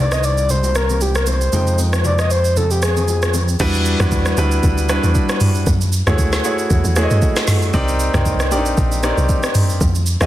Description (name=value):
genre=amapiano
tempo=116 BPM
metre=4/4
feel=swing 55% on 16ths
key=unclear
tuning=A4 = 440 Hz
part: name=breathy flute-like synth lead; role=melody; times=0.0-3.3 s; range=G4 to Eb5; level=-20 LUFS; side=left 1 dB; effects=chorus, tape echo
part: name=clear baby grand piano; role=accompaniment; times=0.0-10.3 s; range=Eb3 to G5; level=-21 LUFS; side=equal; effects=none
part: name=fat analog bass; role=bass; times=0.0-3.6 s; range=C2 to F2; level=-18 LUFS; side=equal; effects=none
part: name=smooth R&B drum kit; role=drums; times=0.1-10.3 s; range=crash cymbal, hi-hat, kick drum, rim click, shaker, snare drum, toms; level=-19 LUFS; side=equal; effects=soft clipping on snare
part: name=congas and bongos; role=percussion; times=0.5-3.5 s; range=none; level=-27 LUFS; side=left 3 dB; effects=none
part: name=woody log drum bass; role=bass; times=3.6-10.3 s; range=Bb1 to G2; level=-18 LUFS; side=equal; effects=none
room=digital ambience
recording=dense, heavily limited modern master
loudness=-14 LUFS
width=side -14 dB against mid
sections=0.0-3.6 A section; 3.6-10.3 B section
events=drop 3.6-10.3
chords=0.0 Cm9; 1.5 Fm9; 3.6 Em9; 5.7 F#m9; 7.7 Cm9